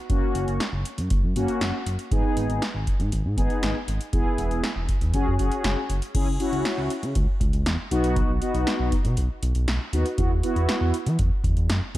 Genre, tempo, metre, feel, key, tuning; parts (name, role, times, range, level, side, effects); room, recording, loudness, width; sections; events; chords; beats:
synth-pop; 119 BPM; 4/4; straight; A4 = 440 Hz
mellow synth brass; accompaniment; 0.1-12.0 s; A#3 to G#4; -27 LUFS; left 1 dB; chorus
smooth gliding synth bass; bass; 0.1-12.0 s; E1 to E3; -25 LUFS; equal
electro analog drum machine; drums; 0.1-12.0 s; crash cymbal, hi-hat, kick drum, snare drum; -26 LUFS; equal
light reverb; dark, warm production; -22 LUFS; side -15 dB against mid
0.0-6.1 A section; 6.1-12.0 B section
0.1 F#; 2.1 G#m; 4.1 E; 5.1 F#sus2; 6.1 C#m; 7.9 B; 10.2 Esus2
| 0.10 0.60 1.11 1.61 | 2.12 2.62 3.12 3.63 | 4.13 4.64 5.14 5.64 | 6.15 6.65 7.16 7.66 | 8.16 8.67 9.17 9.68 | 10.18 10.69 11.19 11.70